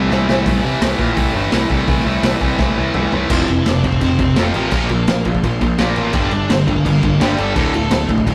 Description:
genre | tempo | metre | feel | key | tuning
punk rock | 169 BPM | 4/4 | straight | unclear | A4 = 440 Hz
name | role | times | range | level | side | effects
overdriven electric guitar | melody | 0.0-0.1, 3.3-8.1 s | E3 to D5 | -26 LUFS | equal | none
distorted electric guitar | riff | 0.0-8.3 s | D2 to Bb3 | -23 LUFS | equal | overdrive
tight distorted guitar | riff | 0.0-8.3 s | D2 to Bb3 | -23 LUFS | equal | distortion
fuzz picked electric bass | bass | 0.0-8.3 s | D1 to C3 | -22 LUFS | equal | overdrive
raw garage drum kit | drums | 0.1-8.3 s | crash cymbal, hi-hat, kick drum, snare drum, toms | -22 LUFS | equal | none
room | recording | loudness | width
light reverb | rough rehearsal-room recording, tube saturation | -16 LUFS | mono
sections
0.5-3.3 A section; 3.3-8.3 B section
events
drum fill 0.1-0.5, 2.6-3.3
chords
0.5 Am; 3.3 F5; 4.7 Bb5; 6.1 Gm; 7.6 D5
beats
0.11 | 0.47 0.82 1.17 1.53 | 1.88 2.24 2.59 2.95 | 3.31 3.66 4.01 4.37 | 4.72 5.08 5.43 5.79 | 6.14 6.50 6.85 7.21 | 7.56 7.92 8.27

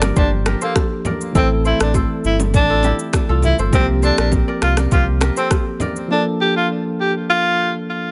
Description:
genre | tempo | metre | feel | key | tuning
afrobeats | 101 BPM | 4/4 | straight | unclear | A4 = 440 Hz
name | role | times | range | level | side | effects
tine electric piano | accompaniment | 0.0-8.1 s | E3 to A4 | -25 LUFS | equal | none
kora | riff | 0.0-7.1 s | E4 to D5 | -28 LUFS | equal | delay
sub bass with octave | bass | 0.0-5.3 s | G1 to C2 | -21 LUFS | equal | none
afro-pop drum kit | drums | 0.0-6.1 s | finger snaps, kick drum, rim click, shaker | -21 LUFS | equal | none
bongos and congas | percussion | 0.0-5.9 s | none | -28 LUFS | equal | none
breathy tenor saxophone | melody | 0.2-7.7 s | Bb3 to G4 | -22 LUFS | equal | delay
room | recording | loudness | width
small room ambience | nothing above 10.9 kHz | -17 LUFS | mono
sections
0.0-8.1 A section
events
drums muted 6.1-8.1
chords
0.0 Gm7; 1.4 Am; 3.7 C7sus4; 6.1 Bbmaj7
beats
0.16 0.76 | 1.35 1.95 2.54 3.13 | 3.73 4.32 4.92 5.51 | 6.11 6.70 7.29 7.89

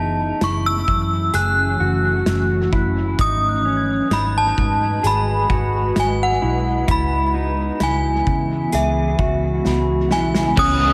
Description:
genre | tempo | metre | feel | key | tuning
dream pop | 65 BPM | 4/4 | straight | unclear | A4 = 438 Hz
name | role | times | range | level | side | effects
synth chime | melody | 0.0-10.9 s | E5 to F#6 | -24 LUFS | equal | ensemble chorus, dub echo
ethereal airy pad | sustained chords | 0.0-10.9 s | C#3 to D#5 | -28 LUFS | equal | ensemble chorus, built-in reverb
mellow electric guitar | arpeggios | 0.0-10.9 s | C#4 to G#4 | -26 LUFS | equal | subtle chorus, dub echo
vintage muted picked electric bass | bass | 0.0-10.9 s | F#1 to C#3 | -25 LUFS | equal | none
loose indie drum kit | drums | 0.4-10.8 s | crash cymbal, hi-hat, kick drum, snare drum | -26 LUFS | equal | dub echo
glockenspiel with rubber mallets | texture | 3.2-10.9 s | B5 to G#6 | -34 LUFS | equal | dub echo
crunchy overdriven guitar | accompaniment | 10.6-10.9 s | C#3 to G#4 | -27 LUFS | equal | tremolo, ensemble chorus, dub echo
room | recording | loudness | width
moderate echo chamber reverb, RT60 2.1 s | echo-heavy mix | -19 LUFS | mono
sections
0.0-10.6 A section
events
drum fill 9.7-10.6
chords
0.0 F#m7; 3.2 G#m7; 6.9 C#m7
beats
0.42 1.34 2.27 | 3.19 4.11 5.04 5.96 | 6.88 7.80 8.73 9.65 | 10.57

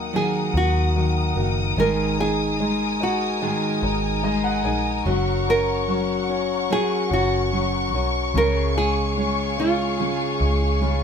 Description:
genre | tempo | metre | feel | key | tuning
pop ballad | 73 BPM | 4/4 | straight | F# major | A4 = 440 Hz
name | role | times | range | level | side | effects
nylon-string guitar | melody | 0.0-11.0 s | E#4 to A#4 | -25 LUFS | right 2 dB | none
warm concert grand piano | accompaniment | 0.0-11.0 s | C#3 to G#5 | -26 LUFS | left 4 dB | none
warm studio string section | sustained chords | 0.0-11.0 s | G#4 to D#6 | -27 LUFS | left 2 dB | none
fingerpicked steel-string acoustic guitar | arpeggios | 0.0-11.0 s | G#2 to A#4 | -28 LUFS | right 3 dB | none
vintage muted fingered electric bass | bass | 0.0-11.0 s | F#1 to D#2 | -25 LUFS | equal | none
room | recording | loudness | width
moderate studio reverb, RT60 0.6 s | band playing live in one room | -19 LUFS | side -7 dB against mid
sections
0.0-11.0 A section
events
grand piano fill 3.8-5.1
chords
0.0 D#m; 1.8 G#sus2; 5.1 F#; 8.3 C#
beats
0.13 0.95 | 1.77 2.60 3.42 4.24 | 5.06 5.88 6.71 7.53 | 8.35 9.17 9.99 10.81

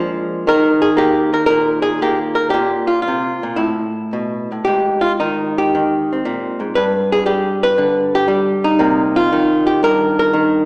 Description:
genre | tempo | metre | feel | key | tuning
solo jazz | 116 BPM | 4/4 | swing 69% on 8ths, rubato | C minor | A4 = 437 Hz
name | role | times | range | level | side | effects
archtop guitar, miked and amplified | solo | 0.0-10.7 s | G2 to B4 | -13 LUFS | equal | none
room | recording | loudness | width
wet recital hall reverb, RT60 1.7 s | recorded in a church or concert hall, small speaker sound | -13 LUFS | side -29 dB against mid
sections
0.0-10.7 A section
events
none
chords
0.5 Eb5; 2.5 Bb5; 3.6 Asus2; 4.7 Abmaj7; 6.8 G; 8.8 Cm7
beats
| 0.47 0.99 1.51 2.03 | 2.55 3.06 3.59 4.12 | 4.66 5.19 5.72 6.24 | 6.75 7.27 7.78 8.28 | 8.79 9.31 9.82 10.32

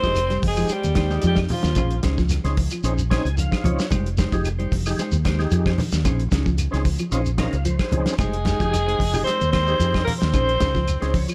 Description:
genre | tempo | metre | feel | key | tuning
afrobeat | 112 BPM | 4/4 | swing 53% on 16ths | F minor | A4 = 440 Hz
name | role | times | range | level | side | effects
raspy alto saxophone | melody | 0.0-2.0, 8.2-11.2 s | F4 to C5 | -26 LUFS | equal | none
raspy tenor saxophone | second line | 0.0-2.0, 8.2-11.2 s | F3 to C4 | -35 LUFS | equal | none
percussive tonewheel organ | accompaniment | 0.0-11.3 s | Ab3 to Ab5 | -32 LUFS | equal | slow rotary speaker, overdrive, chorus vibrato
semi-hollow electric guitar | arpeggios | 0.0-11.3 s | Db3 to Ab3 | -33 LUFS | equal | none
mellow electric guitar | stabs | 0.0-11.2 s | Ab3 to C5 | -34 LUFS | equal | none
fingered electric bass | bass | 0.0-11.2 s | F1 to F2 | -25 LUFS | equal | none
cloth-damped thuddy drum kit | drums | 0.0-11.3 s | hi-hat, kick drum, snare drum | -28 LUFS | equal | none
congas | percussion | 0.0-11.3 s | none | -32 LUFS | equal | none
shekere | percussion | 0.0-11.3 s | none | -32 LUFS | equal | none
claves | percussion | 0.2-11.3 s | none | -39 LUFS | equal | none
room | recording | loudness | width
little or no reverb | none | -21 LUFS | mono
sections
0.0-11.3 A section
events
tonewheel organ fill 2.8-3.9, 7.1-8.2, 10.9-11.3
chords
0.0 Fm9; 1.8 Bbm11; 3.9 Fm9; 6.1 Bbm11; 8.2 Fm9; 10.3 Bbm11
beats
0.16 0.70 1.23 | 1.77 2.30 2.84 3.38 | 3.91 4.45 4.98 5.52 | 6.05 6.59 7.12 7.66 | 8.20 8.73 9.27 9.80 | 10.34 10.88

